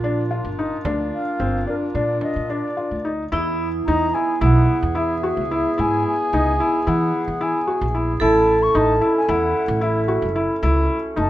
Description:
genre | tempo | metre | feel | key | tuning
contemporary instrumental, chamber music in an uneven meter | 221 BPM (eighths) | 9/8 | straight | unclear | A4 = 440 Hz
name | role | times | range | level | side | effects
vibraphone with hard mallets | second line | 0.0-11.3 s | E4 to A4 | -24 LUFS | right 2 dB | none
warm woodwind section | sustained chords | 0.0-11.3 s | E3 to G#4 | -28 LUFS | equal | none
felt-muted upright piano | arpeggios | 0.0-11.3 s | C4 to Gb4 | -23 LUFS | left 1 dB | none
upright bass | bass | 0.0-11.3 s | Gb1 to E3 | -23 LUFS | right 1 dB | none
frame drum | percussion | 0.0-2.5 s | none | -32 LUFS | right 2 dB | none
baroque flute | melody | 1.1-11.3 s | Bb4 to Db6 | -24 LUFS | left 2 dB | none
room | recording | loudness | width
light reverb | none | -18 LUFS | side -14 dB against mid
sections
0.0-3.3 A section; 3.3-11.3 B section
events
none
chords
0.0 Bb; 3.3 E; 8.2 Gbm

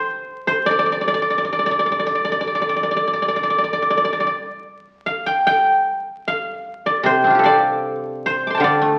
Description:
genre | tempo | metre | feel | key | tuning
chinese traditional, Chinese solo plucked strings | 69-80 BPM | 4/4 | rubato | D yu mode | A4 = 440 Hz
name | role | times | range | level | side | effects
guzheng | solo | 0.0-9.0 s | C3 to D6 | -19 LUFS | equal | none
room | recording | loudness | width
wet large studio reverb, RT60 1.2 s | very old 78 rpm record, vinyl crackle | -19 LUFS | mono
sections
0.0-5.4 A section; 5.4-9.0 B section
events
none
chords
none

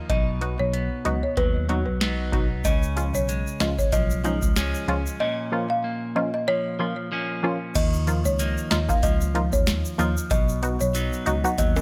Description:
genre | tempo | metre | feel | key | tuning
dancehall | 94 BPM | 4/4 | swing 56% on 16ths | Eb minor | A4 = 440 Hz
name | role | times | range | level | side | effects
electric guitar at the edge of break-up | arpeggios | 0.0-11.8 s | Bb2 to D#4 | -32 LUFS | equal | spring reverb
folk marimba with medium mallets | melody | 0.1-11.7 s | B4 to F#5 | -30 LUFS | equal | delay
mellow tine electric piano | bass | 0.1-11.8 s | B1 to D#2 | -29 LUFS | equal | none
booming analog drum machine | drums | 0.1-11.8 s | crash cymbal, hi-hat, kick drum, snare drum | -27 LUFS | equal | overdrive
wavetable chord stab | accompaniment | 0.4-11.6 s | F3 to F#4 | -30 LUFS | equal | sidechain pumping
egg shaker and timbales | percussion | 2.6-11.8 s | none | -38 LUFS | equal | none
room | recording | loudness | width
little or no reverb | none | -24 LUFS | mono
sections
0.0-7.8 A section; 7.8-11.8 B section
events
none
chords
0.1 B; 2.6 Db; 5.2 Bbm; 7.8 Ebsus2; 10.3 B

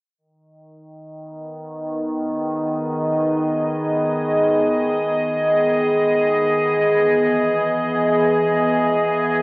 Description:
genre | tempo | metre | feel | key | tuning
ambient | free time | none | none | G# minor | A4 = 441 Hz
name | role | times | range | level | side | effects
evolving wavetable pad | sustained chords | 1.4-9.4 s | D#3 to D#5 | -17 LUFS | equal | chorus, built-in reverb
room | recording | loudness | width
wet cathedral reverb, RT60 5.3 s | in a vast, echoing space, cassette tape, small speaker sound | -16 LUFS | side -32 dB against mid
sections
0.2-9.4 A section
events
none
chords
0.2 G#m; 6.4 Emaj7

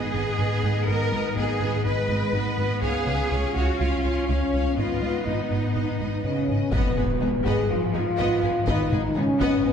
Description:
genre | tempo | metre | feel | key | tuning
cinematic, hybrid orchestral and electronic film score | 123 BPM | 4/4 | straight | G# dorian | A4 = 440 Hz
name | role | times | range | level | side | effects
rich symphonic violin section | second line | 0.0-9.6 s | D#4 to E#5 | -33 LUFS | left 4 dB | none
rich symphonic viola section | accompaniment | 0.0-9.6 s | G#3 to C#4 | -32 LUFS | right 1 dB | none
warm French horn section | sustained chords | 0.0-9.7 s | B3 to G#4 | -28 LUFS | left 1 dB | none
rubbery square bass | riff | 0.0-9.7 s | C#2 to G#3 | -28 LUFS | equal | none
rich symphonic cello section | bass | 0.0-9.7 s | B2 to B4 | -29 LUFS | equal | none
warm chamber double bass section | bass | 0.1-9.5 s | G#1 to C#2 | -30 LUFS | right 1 dB | none
warm symphonic violin section | melody | 6.7-9.6 s | G#4 to D#5 | -36 LUFS | left 5 dB | none
taiko ensemble | drums | 6.7-9.7 s | none | -30 LUFS | left 1 dB | none
impact | sound effects | 6.7-8.7 s | none | -33 LUFS | left 1 dB | none
room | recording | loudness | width
wet scoring stage reverb, RT60 1.7 s | heard from further back in the room | -22 LUFS | side -7 dB against mid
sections
0.0-6.7 A section; 6.7-9.7 B section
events
impact 6.7-8.7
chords
0.0 G#m; 2.8 C#; 4.8 G#m

